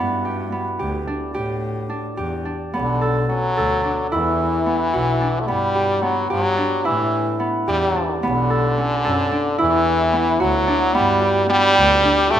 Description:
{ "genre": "contemporary instrumental, chamber music in an uneven meter", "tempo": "219 BPM (eighths)", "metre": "5/8", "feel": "straight", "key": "G lydian", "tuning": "A4 = 439 Hz", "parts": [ { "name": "Celtic harp", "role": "arpeggios", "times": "0.0-12.4 s", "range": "B3 to A4", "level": "-21 LUFS", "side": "right 2 dB", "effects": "none" }, { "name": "rich double bass", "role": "bass", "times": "0.0-12.4 s", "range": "B1 to A2", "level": "-25 LUFS", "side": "left 1 dB", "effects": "none" }, { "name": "French horn with straight mute", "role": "second line", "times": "2.7-12.4 s", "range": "D3 to A3", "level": "-19 LUFS", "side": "left 1 dB", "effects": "none" } ], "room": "wet recital hall reverb, RT60 1.4 s", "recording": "none", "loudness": "-17 LUFS", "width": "side -10 dB against mid", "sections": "0.0-8.2 A section; 8.2-12.4 B section", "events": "none", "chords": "0.0 G; 1.4 A7sus4; 2.7 Bm9; 4.1 Esus2; 5.5 Gmaj7; 6.8 A9sus4; 8.2 Bm9; 9.6 Esus2" }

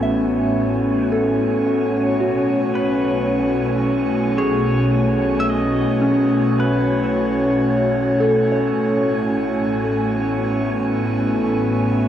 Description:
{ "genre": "ambient", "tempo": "55 BPM", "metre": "3/4", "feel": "straight", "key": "unclear", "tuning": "A4 = 440 Hz", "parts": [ { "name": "pedal steel guitar", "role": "melody", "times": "0.0-7.6 s", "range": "A4 to E5", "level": "-29 LUFS", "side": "left 1 dB", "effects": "tape echo" }, { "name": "airy breathy pad", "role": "sustained chords", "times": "0.0-12.1 s", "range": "A2 to C#5", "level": "-18 LUFS", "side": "equal", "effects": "chorus" }, { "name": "soft synth bell", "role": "arpeggios", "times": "0.0-12.1 s", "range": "C#4 to E5", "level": "-25 LUFS", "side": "equal", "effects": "chorus, tape echo" }, { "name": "warm studio double bass section", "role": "bass", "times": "0.0-12.1 s", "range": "A1 to B1", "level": "-28 LUFS", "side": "equal", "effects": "tube saturation" }, { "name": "analog drone", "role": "drone", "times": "5.1-12.1 s", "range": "A3 to E4", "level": "-33 LUFS", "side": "equal", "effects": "none" }, { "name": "wind-like tuned noise texture", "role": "texture", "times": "0.0-12.1 s", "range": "G#5", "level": "-32 LUFS", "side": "right 4 dB", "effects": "built-in reverb" } ], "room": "wet studio reverb, RT60 0.6 s", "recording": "home recording on cassette", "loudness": "-16 LUFS", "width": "side -10 dB against mid", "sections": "0.0-12.1 A section", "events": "fade-in on synth texture 0.0-12.1; fade-in on pedal steel guitar 0.0-12.1", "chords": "0.0 Amaj9; 2.2 B7sus2; 8.7 Amaj9" }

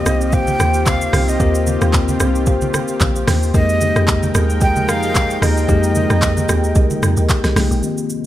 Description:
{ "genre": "amapiano", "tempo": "112 BPM", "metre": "4/4", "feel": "swing 55% on 16ths", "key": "unclear", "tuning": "A4 = 440 Hz", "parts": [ { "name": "breathy jazz flute", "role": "melody", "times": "0.0-8.3 s", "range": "Eb5 to G5", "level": "-22 LUFS", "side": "right 1 dB", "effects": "low-pass filter, tape echo" }, { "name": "bell-like tine electric piano", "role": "accompaniment", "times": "0.0-8.3 s", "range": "Eb3 to Bb4", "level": "-23 LUFS", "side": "left 4 dB", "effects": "low-pass filter" }, { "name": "lush unison pad", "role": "sustained chords", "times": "0.0-8.3 s", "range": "Eb2 to G5", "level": "-24 LUFS", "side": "equal", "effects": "chorus, low-pass filter" }, { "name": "deep log drum bass", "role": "bass", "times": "0.0-7.8 s", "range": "Bb1 to F2", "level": "-18 LUFS", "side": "equal", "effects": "none" }, { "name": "marimba with medium mallets", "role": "stabs", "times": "0.1-7.5 s", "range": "G4 to F5", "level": "-24 LUFS", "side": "left 1 dB", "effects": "tape echo" }, { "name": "smooth R&B drum kit", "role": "drums", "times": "0.1-8.2 s", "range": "handclaps, hi-hat, kick drum, rim click, shaker, snare drum", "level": "-19 LUFS", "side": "equal", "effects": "overdrive" }, { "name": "congas", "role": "percussion", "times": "0.1-7.7 s", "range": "none", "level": "-26 LUFS", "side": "right 2 dB", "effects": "none" } ], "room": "light reverb", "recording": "none", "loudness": "-13 LUFS", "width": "side -13 dB against mid", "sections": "0.0-7.8 A section", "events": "drop 0.0-7.8", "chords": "0.0 Eb69; 3.5 Fm11" }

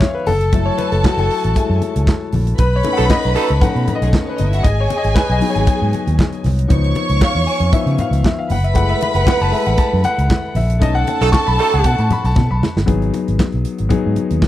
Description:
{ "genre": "disco", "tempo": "117 BPM", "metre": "4/4", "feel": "straight", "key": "F# dorian", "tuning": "A4 = 440 Hz", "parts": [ { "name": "warm concert grand piano", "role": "accompaniment", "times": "0.0-14.5 s", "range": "E#3 to C#6", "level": "-20 LUFS", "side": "left 4 dB", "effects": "none" }, { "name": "modern studio drum kit", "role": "drums", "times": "0.0-14.5 s", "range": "handclaps, hi-hat, kick drum, snare drum", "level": "-17 LUFS", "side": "equal", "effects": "none" }, { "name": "congas", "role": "percussion", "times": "0.0-14.5 s", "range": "none", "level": "-24 LUFS", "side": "left 3 dB", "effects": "none" }, { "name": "warm studio violin section", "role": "second line", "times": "0.3-12.6 s", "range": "G#3 to C#6", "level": "-22 LUFS", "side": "right 2 dB", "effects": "none" }, { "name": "fingered electric bass", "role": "bass", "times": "0.3-14.4 s", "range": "F#1 to C#3", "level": "-17 LUFS", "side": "equal", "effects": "none" }, { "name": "warm horn section", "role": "stabs", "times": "3.0-3.5, 11.2-11.9 s", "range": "D#4 to A4", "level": "-18 LUFS", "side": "right 7 dB", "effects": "none" } ], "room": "little or no reverb", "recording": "dry, close 1970s-style studio recording", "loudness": "-13 LUFS", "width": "side -13 dB against mid", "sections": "0.0-12.9 A section; 12.9-14.5 B section", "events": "grand piano solo 0.0-12.9; band accent 2.6-4.6, 10.8-12.9; drum fill 12.4-12.9", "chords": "0.3 F#m9; 2.6 B7; 4.6 G#m7; 6.7 C#7; 8.5 F#m9; 10.8 B7; 12.9 G#m7" }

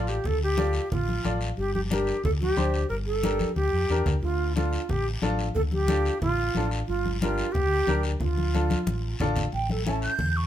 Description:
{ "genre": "latin, cumbia", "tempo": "181 BPM", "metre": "4/4", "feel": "straight", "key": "D minor", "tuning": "A4 = 440 Hz", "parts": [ { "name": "breathy hollow jazz flute", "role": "melody", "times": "0.0-10.5 s", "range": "F4 to G6", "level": "-28 LUFS", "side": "right 2 dB", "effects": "none" }, { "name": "bright upright piano", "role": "accompaniment", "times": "0.0-10.1 s", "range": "C#4 to D5", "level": "-31 LUFS", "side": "left 3 dB", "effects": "none" }, { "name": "fingered electric bass", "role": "bass", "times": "0.0-10.5 s", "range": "G1 to F2", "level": "-28 LUFS", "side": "equal", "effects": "none" }, { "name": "guiro", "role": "percussion", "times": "0.1-10.5 s", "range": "none", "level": "-40 LUFS", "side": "left 4 dB", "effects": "none" }, { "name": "congas", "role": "percussion", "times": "0.3-10.4 s", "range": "none", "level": "-31 LUFS", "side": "left 1 dB", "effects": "none" } ], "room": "light reverb", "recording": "minimal, uncompressed stereo recording", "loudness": "-24 LUFS", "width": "side -11 dB against mid", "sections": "0.0-9.5 A section", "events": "drum fill 3.4-4.2, 8.5-9.5", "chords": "0.0 Dm; 1.6 Gm; 4.2 Dm; 6.9 Gm; 8.2 Dm; 9.5 A" }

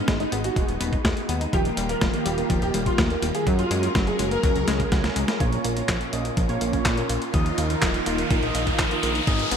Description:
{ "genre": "italo disco", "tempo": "124 BPM", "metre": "4/4", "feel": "straight", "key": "unclear", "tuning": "A4 = 441 Hz", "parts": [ { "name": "warm concert grand piano", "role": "melody", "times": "0.0-5.3 s", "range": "F#3 to A#4", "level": "-28 LUFS", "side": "right 1 dB", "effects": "ensemble chorus, ping-pong delay, shimmer reverb" }, { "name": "phased string machine", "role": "sustained chords", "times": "0.0-9.6 s", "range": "D#3 to A#4", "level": "-29 LUFS", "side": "equal", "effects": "ensemble chorus, phaser, shimmer reverb" }, { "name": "analog pluck", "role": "arpeggios", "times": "0.0-9.6 s", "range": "E#3 to D#4", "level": "-31 LUFS", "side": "left 2 dB", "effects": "chorus, ping-pong delay, shimmer reverb" }, { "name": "fat analog bass", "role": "bass", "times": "0.1-9.6 s", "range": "D#1 to A#2", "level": "-28 LUFS", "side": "equal", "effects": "none" }, { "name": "dusty soul sampler-style drum kit", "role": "drums", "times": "0.1-9.6 s", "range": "handclaps, hi-hat, snare drum", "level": "-28 LUFS", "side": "equal", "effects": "high-pass filter on hats, high-pass filter on snare, high-pass filter on room" }, { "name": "electronic kick drum", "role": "drums", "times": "0.1-9.4 s", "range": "none", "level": "-25 LUFS", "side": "equal", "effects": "none" }, { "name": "chorused polysynth", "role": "stabs", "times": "5.4-9.6 s", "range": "G#2 to E#5", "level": "-29 LUFS", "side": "right 2 dB", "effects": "ping-pong delay, shimmer reverb" }, { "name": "riser", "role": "sound effects", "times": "6.4-9.6 s", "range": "none", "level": "-29 LUFS", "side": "equal", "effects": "none" } ], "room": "moderate plate reverb, RT60 2.1 s", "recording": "bright 1980s-style digital production", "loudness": "-21 LUFS", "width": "side -7 dB against mid", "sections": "0.0-5.4 A section; 5.4-9.6 B section", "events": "drum fill 4.7-5.4; riser 6.4-9.6", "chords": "0.0 G#m; 1.5 D#add9; 3.5 F#add9; 5.4 A#m; 7.3 D#sus2" }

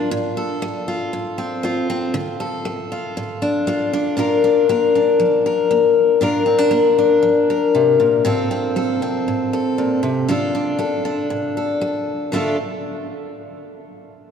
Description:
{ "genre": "country", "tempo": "118 BPM", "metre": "4/4", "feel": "straight", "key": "D minor", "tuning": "A4 = 439 Hz", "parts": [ { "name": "picked steel-string acoustic guitar", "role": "solo", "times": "0.0-12.6 s", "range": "A2 to Bb4", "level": "-17 LUFS", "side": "left 2 dB", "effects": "none" } ], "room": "wet cathedral reverb, RT60 5.1 s", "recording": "recorded in a church or concert hall", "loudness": "-16 LUFS", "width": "side -7 dB against mid", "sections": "0.0-4.2 A section; 4.2-12.3 B section; 12.3-14.3 C section", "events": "none", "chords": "0.1 F/A; 2.1 Dm; 4.2 Bb; 8.2 F/A; 10.3 Dm" }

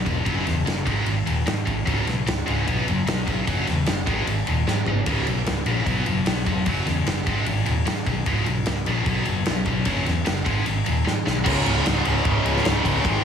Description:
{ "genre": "hard rock", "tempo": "150 BPM", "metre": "4/4", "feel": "straight", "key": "unclear", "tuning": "A4 = 440 Hz", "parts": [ { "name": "scooped high-gain guitar", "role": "riff", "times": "0.0-13.2 s", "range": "C#2 to B3", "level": "-24 LUFS", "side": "left 1 dB", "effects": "distortion" }, { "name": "fretless electric bass", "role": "bass", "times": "0.1-13.2 s", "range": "C#1 to G#2", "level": "-26 LUFS", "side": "equal", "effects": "none" }, { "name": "huge arena drum kit", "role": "drums", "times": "0.1-13.1 s", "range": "crash cymbal, kick drum, ride cymbal, snare drum, toms", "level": "-25 LUFS", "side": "equal", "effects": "none" }, { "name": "heavy high-gain guitar", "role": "riff", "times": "11.4-13.2 s", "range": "C#2 to G#3", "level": "-24 LUFS", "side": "equal", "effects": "distortion" } ], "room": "light reverb, small room ambience", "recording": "heavily compressed radio sound", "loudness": "-20 LUFS", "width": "side -7 dB against mid", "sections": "0.0-11.5 A section; 11.5-13.2 B section", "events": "drum fill 4.7-5.1, 11.1-11.5", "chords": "0.3 F#5; 0.9 G#5; 1.9 C#5; 2.7 B5; 3.5 F#5; 4.1 G#5; 5.1 C#5; 5.9 B5; 6.7 F#5; 7.3 G#m; 8.3 C#5; 9.1 B5; 9.9 F#5; 10.5 G#m; 11.5 C#5" }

